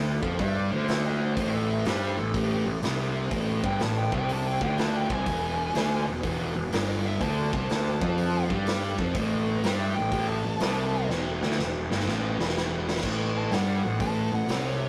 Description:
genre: blues rock power trio and southern rock.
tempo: 124 BPM.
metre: 4/4.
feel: swing 66% on 8ths.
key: unclear.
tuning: A4 = 440 Hz.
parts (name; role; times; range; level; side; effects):
thick fuzz guitar; riff; 0.0-14.9 s; E2 to G3; -34 LUFS; equal; distortion.
fuzz picked electric bass; bass; 0.0-14.9 s; E1 to G2; -30 LUFS; equal; overdrive.
raw garage drum kit; drums; 0.2-14.6 s; crash cymbal, hi-hat, kick drum, snare drum; -34 LUFS; equal; none.
bluesy overdriven lead guitar; melody; 0.4-14.9 s; G4 to A5; -35 LUFS; equal; distortion.
room: moderate stone room reverb, RT60 1.1 s.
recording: rough rehearsal-room recording, tube saturation.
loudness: -27 LUFS.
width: mono.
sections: 0.0-13.0 A section; 13.0-14.9 A section.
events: lead electric guitar solo 0.0-14.9; drum fill 11.1-13.0.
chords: 0.0 D7(no3); 1.4 Gsus24; 5.3 E7; 7.2 D5; 9.1 Am7; 11.1 Emadd11; 13.0 A7(no3).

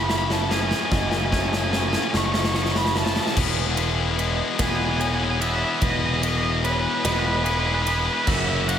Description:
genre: post-rock.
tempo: 49 BPM (dotted quarters).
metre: 6/8.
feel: straight.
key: E major.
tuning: A4 = 436 Hz.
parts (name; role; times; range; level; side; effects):
crunchy overdriven guitar; melody; 0.0-8.8 s; B4 to C#6; -27 LUFS; right 3 dB; digital delay.
twangy electric guitar; arpeggios; 0.0-8.8 s; E2 to G#4; -33 LUFS; left 1 dB; slapback echo, digital delay.
distorted electric guitar; riff; 0.0-8.8 s; F#2 to G#4; -25 LUFS; left 6 dB; overdrive.
fuzz picked electric bass; bass; 0.0-8.8 s; E1 to F#1; -26 LUFS; equal; overdrive.
vibraphone with medium mallets; arpeggios; 0.1-8.8 s; A#4 to E5; -36 LUFS; right 8 dB; digital delay.
big rock drum kit; drums; 0.1-8.8 s; crash cymbal, kick drum, ride cymbal, snare drum; -26 LUFS; equal; none.
room: moderate concert hall reverb, RT60 2.0 s, small room reverb.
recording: big arena sound.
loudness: -20 LUFS.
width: side -9 dB against mid.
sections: 0.0-3.4 A section; 3.4-8.8 B section.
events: build-up 0.0-3.4; drum fill 0.0-3.4.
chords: 0.0 F#madd9; 3.4 Emaj7; 8.3 F#7.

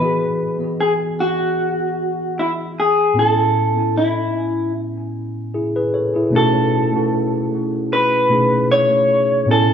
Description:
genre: reggae.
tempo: 76 BPM.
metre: 4/4.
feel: swing 55% on 16ths.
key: unclear.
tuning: A4 = 442 Hz.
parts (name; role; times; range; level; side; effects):
electric guitar through a small old amp; melody; 0.0-9.7 s; E4 to C#5; -17 LUFS; equal; none.
tine electric piano; accompaniment; 0.0-9.7 s; A2 to G#5; -20 LUFS; left 1 dB; tape echo.
room: wet large studio reverb, RT60 1.4 s.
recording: band playing live in one room.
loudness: -16 LUFS.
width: side -8 dB against mid.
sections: 0.0-6.3 A section; 6.3-9.7 B section.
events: none.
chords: 0.0 Emaj7; 3.2 Amaj7; 6.3 B9.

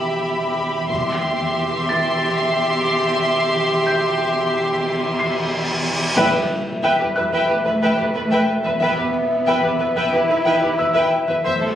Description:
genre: cinematic, suspense film score.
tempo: 91 BPM.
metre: 4/4.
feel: straight.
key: E minor.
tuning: A4 = 440 Hz.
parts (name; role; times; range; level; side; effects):
warm studio violin section; melody; 0.0-11.7 s; A4 to C6; -24 LUFS; left 1 dB; none.
rich studio violin section; second line; 0.0-11.7 s; G4 to E5; -22 LUFS; equal; none.
warm studio cello section; bass; 0.0-11.8 s; E2 to E4; -25 LUFS; right 1 dB; none.
saturated sub bass; drone; 0.0-11.8 s; E1; -36 LUFS; left 1 dB; none.
felt-muted upright piano; texture; 0.0-11.8 s; E6 to C7; -29 LUFS; equal; none.
warm studio double bass section; bass; 0.9-1.5, 6.2-11.7 s; E1 to E2; -30 LUFS; right 1 dB; none.
taiko ensemble; drums; 0.9-2.2, 6.2-11.8 s; none; -37 LUFS; left 1 dB; none.
cymbal swell and impact; sound effects; 4.7-8.8 s; none; -25 LUFS; equal; none.
rich studio viola section; accompaniment; 6.2-11.7 s; B4 to C5; -24 LUFS; right 1 dB; none.
warm French horn section; sustained chords; 6.2-11.8 s; A4 to E5; -21 LUFS; left 2 dB; none.
timpani; percussion; 6.2-7.1 s; E2; -32 LUFS; equal; none.
room: moderate scoring stage reverb, RT60 1.7 s.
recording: recorded on a phone in the room, club reverb.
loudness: -17 LUFS.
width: side -10 dB against mid.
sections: 0.0-6.2 A section; 6.2-11.8 B section.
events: cymbal swell 4.7-6.2; band accent 6.2-6.8; impact 6.2-8.8.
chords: 0.0 Em.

